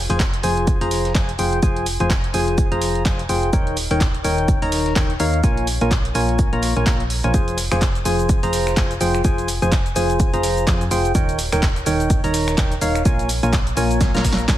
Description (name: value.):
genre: piano house.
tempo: 126 BPM.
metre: 4/4.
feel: swing 58% on 16ths.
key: F minor.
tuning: A4 = 440 Hz.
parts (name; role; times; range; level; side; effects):
solid FM bass; bass; 0.0-14.6 s; Eb1 to F2; -23 LUFS; equal; sidechain pumping.
percussive organ stab; riff; 0.1-14.6 s; Eb3 to Bb5; -21 LUFS; equal; chorus, sidechain pumping, ping-pong delay.
dusty soul sampler-style drum kit; drums; 0.1-14.6 s; hi-hat, shaker, snare drum; -35 LUFS; right 1 dB; none.
punchy analog drum machine; drums; 0.1-14.6 s; cabasa, finger snaps, handclaps, hi-hat, snare drum; -26 LUFS; right 1 dB; none.
electronic kick drum; drums; 0.2-14.6 s; none; -19 LUFS; equal; none.
room: light reverb.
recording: heavily compressed radio sound, multiband compression.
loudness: -16 LUFS.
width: side -13 dB against mid.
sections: 0.0-14.6 A section.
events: drum fill 14.0-14.6.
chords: 0.0 Fm; 3.5 Eb7; 5.4 Bbm7; 7.3 Fm; 11.2 Eb7; 13.1 Bbm7.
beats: 0.20 0.67 1.15 | 1.63 2.10 2.58 3.06 | 3.53 4.01 4.48 4.96 | 5.44 5.91 6.39 6.87 | 7.34 7.82 8.29 8.77 | 9.25 9.72 10.20 10.67 | 11.15 11.63 12.10 12.58 | 13.05 13.53 14.01 14.48.